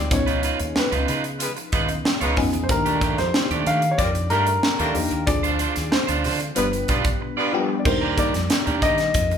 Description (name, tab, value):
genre	polished 1980s jazz-funk pop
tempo	93 BPM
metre	4/4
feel	straight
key	unclear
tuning	A4 = 440 Hz
part	warm concert grand piano	melody	0.0-9.4 s	Bb4 to F5	-25 LUFS	left 2 dB	none
part	FM electric piano	accompaniment	0.0-9.4 s	F3 to Bb4	-27 LUFS	left 3 dB	chorus, phaser
part	fingered electric bass	bass	0.0-9.4 s	G1 to Eb3	-27 LUFS	right 1 dB	none
part	electric guitar at the edge of break-up	riff	0.1-9.4 s	A3 to D5	-27 LUFS	right 6 dB	none
part	crisp fusion drum kit	drums	0.1-9.4 s	crash cymbal, hi-hat, kick drum, snare drum	-24 LUFS	equal	none
part	warm horn section	second line	1.4-7.8 s	G3 to Cb5	-30 LUFS	left 2 dB	ping-pong delay
room	moderate large studio reverb, RT60 0.7 s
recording	band playing live in one room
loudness	-19 LUFS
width	side -8 dB against mid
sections	0.0-7.9 A section; 7.9-9.4 B section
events	none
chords	0.1 Db9; 2.7 Ebmaj9#11; 5.3 Dm7b5; 6.6 G7; 7.9 Ebmaj7